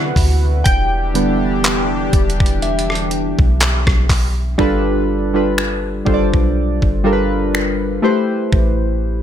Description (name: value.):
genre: contemporary R&B.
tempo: 61 BPM.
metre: 4/4.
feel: swing 54% on 16ths.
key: unclear.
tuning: A4 = 440 Hz.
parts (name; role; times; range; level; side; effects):
warm analog keys; accompaniment; 0.0-9.2 s; C3 to G5; -18 LUFS; equal; chorus.
chorused pulse-width pad; sustained chords; 0.0-4.6 s; C3 to B4; -22 LUFS; left 2 dB; none.
soft 808-style bass; bass; 0.0-9.2 s; E1 to D3; -19 LUFS; equal; none.
soft synth bell; texture; 0.0-5.0 s; E5 to F#5; -29 LUFS; equal; chorus, digital delay.
detuned 8-bit digital drum machine; drums; 0.2-8.8 s; finger snaps, handclaps, hi-hat, kick drum, rim click; -17 LUFS; equal; none.
room: little or no reverb.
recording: none.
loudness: -14 LUFS.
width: side -10 dB against mid.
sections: 0.0-4.6 A section; 4.6-9.2 B section.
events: synth keys solo 0.0-4.6.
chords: 0.0 D13; 0.7 Em7; 4.6 G7; 8.0 Am7.